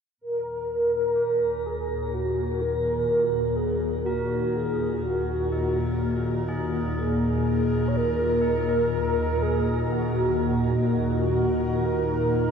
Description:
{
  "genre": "dark ambient drone",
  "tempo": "62 BPM",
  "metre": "4/4",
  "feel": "straight",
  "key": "unclear",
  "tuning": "A4 = 443 Hz",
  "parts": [
    { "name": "mellow horn-like synth lead", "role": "melody", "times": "0.2-12.5 s", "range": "Gb4 to Db5", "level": "-25 LUFS", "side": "right 1 dB", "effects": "ensemble chorus, shimmer reverb, ping-pong delay" },
    { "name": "dark analog pad", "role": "sustained chords", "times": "0.2-12.5 s", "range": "Bb3 to Eb5", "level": "-36 LUFS", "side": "equal", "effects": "none" },
    { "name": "bowed-like drone", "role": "drone", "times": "0.9-12.5 s", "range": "Eb2 to Bb2", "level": "-26 LUFS", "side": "left 1 dB", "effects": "built-in reverb, phaser" },
    { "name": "bubbling stepped-filter texture", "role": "texture", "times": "0.8-12.5 s", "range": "Bb4", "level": "-40 LUFS", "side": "right 2 dB", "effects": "chorus, built-in reverb, shimmer reverb" },
    { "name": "tubular bells", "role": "arpeggios", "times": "1.2-12.5 s", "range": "Db4 to Bb4", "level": "-40 LUFS", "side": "left 1 dB", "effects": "shimmer reverb, ping-pong delay" }
  ],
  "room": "wet huge ambient reverb, RT60 7.3 s",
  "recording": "cassette tape",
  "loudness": "-22 LUFS",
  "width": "side -6 dB against mid",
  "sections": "0.2-12.5 A section",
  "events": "fade-in on synth texture 0.2-12.5; fade-in on tubular bells 0.2-12.5",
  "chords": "0.2 Ebm",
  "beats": "| 0.18 1.15 2.12 3.08 | 4.05 5.02 5.99 6.96 | 7.92 8.89 9.86 10.83 | 11.79"
}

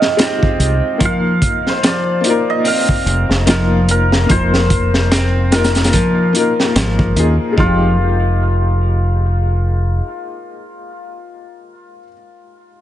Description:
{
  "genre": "trip hop",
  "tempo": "73 BPM",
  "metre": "4/4",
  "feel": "swing 57% on 16ths",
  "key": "F minor",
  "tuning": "A4 = 443 Hz",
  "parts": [
    { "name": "cimbalom", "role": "melody", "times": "0.0-12.1 s", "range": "F4 to G5", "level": "-20 LUFS", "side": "equal", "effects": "vintage 12-bit sampler grit, dub echo" },
    { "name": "felt-muted upright piano", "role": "accompaniment", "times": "0.0-12.8 s", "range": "Ab3 to Bb4", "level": "-20 LUFS", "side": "left 3 dB", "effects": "tremolo, tape echo" },
    { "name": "crunchy breakbeat drum kit", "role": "drums", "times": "0.0-7.8 s", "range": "hi-hat, kick drum, snare drum", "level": "-16 LUFS", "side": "equal", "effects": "none" },
    { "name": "clean electric guitar", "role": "arpeggios", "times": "0.2-8.0 s", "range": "F3 to C4", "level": "-21 LUFS", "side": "equal", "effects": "tape echo" },
    { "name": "deep dub fingered electric bass", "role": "bass", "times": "0.6-10.0 s", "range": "F1 to Eb2", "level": "-15 LUFS", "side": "equal", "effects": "none" }
  ],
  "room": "light reverb, small room ambience",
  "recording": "heavily compressed radio sound, nothing above 10.9 kHz",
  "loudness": "-12 LUFS",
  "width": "side -12 dB against mid",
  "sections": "0.0-7.6 A section; 7.6-10.9 B section",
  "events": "none",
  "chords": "0.0 Fm9; 1.0 Ebsus2/F; 7.6 Fm9",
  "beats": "0.18 | 1.00 1.82 2.65 3.47 | 4.29 5.11 5.93 6.76 | 7.58 8.40 9.22 10.04"
}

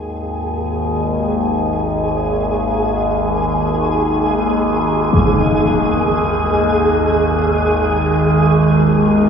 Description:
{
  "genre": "dark ambient drone",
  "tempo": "free time",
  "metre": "none",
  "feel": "none",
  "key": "unclear",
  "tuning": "A4 = 441 Hz",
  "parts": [
    { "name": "overtone-sweeping drone", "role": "drone", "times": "0.0-9.3 s", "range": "G#1 to D#2", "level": "-17 LUFS", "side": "left 1 dB", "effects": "chorus, built-in reverb, phaser" },
    { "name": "flickering grainy texture", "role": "texture", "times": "0.0-9.3 s", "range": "G#4", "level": "-19 LUFS", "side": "right 2 dB", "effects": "built-in reverb" },
    { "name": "impact", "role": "percussion", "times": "5.1-5.3 s", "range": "none", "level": "-20 LUFS", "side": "left 1 dB", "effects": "low-pass filter on sfx" },
    { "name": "sweeping resonant pad", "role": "sustained chords", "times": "7.0-9.3 s", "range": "D#3 to C#4", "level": "-15 LUFS", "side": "right 1 dB", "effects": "chorus, phaser" }
  ],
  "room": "wet cathedral reverb, RT60 5.1 s",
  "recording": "small room ambience",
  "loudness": "-14 LUFS",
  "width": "side -7 dB against mid",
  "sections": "0.0-9.3 A section",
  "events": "none",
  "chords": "0.0 G#5",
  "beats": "free time"
}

